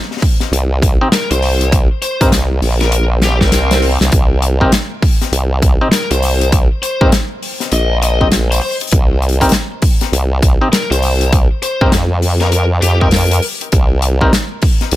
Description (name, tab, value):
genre	glitch hop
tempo	100 BPM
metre	4/4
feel	swing 62% on 16ths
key	C minor pentatonic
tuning	A4 = 443 Hz
part	modern studio drum kit	drums	0.0-15.0 s	hi-hat, snare drum	-17 LUFS	left 2 dB	none
part	electronic kick drum	drums	0.2-14.8 s	none	-13 LUFS	equal	none
part	formant-sweep wobble bass	bass	0.5-15.0 s	Bb1 to G2	-14 LUFS	equal	chorus, tube saturation
part	clav	stabs	1.0-14.3 s	C4 to Eb5	-19 LUFS	left 1 dB	sidechain pumping, ping-pong delay
part	biting lead guitar	melody	1.1-13.4 s	G4 to Eb5	-21 LUFS	left 2 dB	overdrive, ping-pong delay
part	swell	sound effects	3.1-4.1 s	none	-25 LUFS	right 1 dB	none
room	small room ambience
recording	none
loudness	-11 LUFS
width	side -15 dB against mid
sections	0.0-15.0 A section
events	swell 3.1-4.1; drum fill 3.2-4.1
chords	0.0 C7(no3)